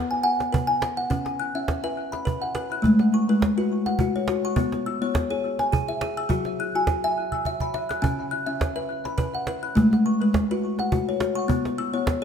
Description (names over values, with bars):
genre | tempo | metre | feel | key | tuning
world meditative, meditative tuned percussion | 104 BPM | 3/4 | swing 54% on 16ths | C# minor | A4 = 440 Hz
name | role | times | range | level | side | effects
kalimba | arpeggios | 0.0-12.2 s | C#3 to F#6 | -22 LUFS | left 1 dB | tape echo
cajon | percussion | 0.1-12.2 s | none | -28 LUFS | right 2 dB | none
room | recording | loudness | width
wet echo chamber reverb, RT60 1.4 s, small room ambience | none | -22 LUFS | side -7 dB against mid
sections
0.0-1.1 A section; 1.1-12.2 B section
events
drum fill 7.3-8.0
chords
0.0 B5; 1.1 C#m; 2.8 A; 4.6 E6/B; 6.3 F#9sus4; 8.0 C#m; 9.8 A; 11.5 E5/B